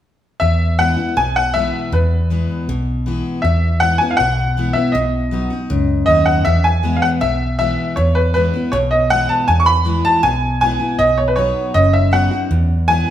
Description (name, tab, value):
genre	honky-tonk and classic country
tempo	159 BPM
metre	4/4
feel	straight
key	E major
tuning	A4 = 444 Hz
part	bright upright piano	melody	0.4-13.1 s	B4 to C#6	-16 LUFS	equal	none
part	picked steel-string acoustic guitar	accompaniment	0.4-13.1 s	E2 to F#4	-21 LUFS	left 3 dB	none
part	vintage muted fingered electric bass	bass	0.4-13.0 s	F#1 to E2	-18 LUFS	right 1 dB	none
room	wet large studio reverb, RT60 1.5 s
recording	band playing live in one room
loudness	-14 LUFS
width	side -11 dB against mid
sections	0.4-6.5 A section; 6.5-13.1 B section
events	none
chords	0.4 E; 5.0 B; 6.5 E; 11.0 B; 12.5 E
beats	| 0.41 0.79 1.17 1.55 | 1.93 2.30 2.68 3.06 | 3.44 3.82 4.20 4.57 | 4.95 5.33 5.71 6.08 | 6.46 6.84 7.22 7.59 | 7.97 8.35 8.73 9.11 | 9.48 9.86 10.24 10.62 | 10.99 11.37 11.75 12.13 | 12.50 12.88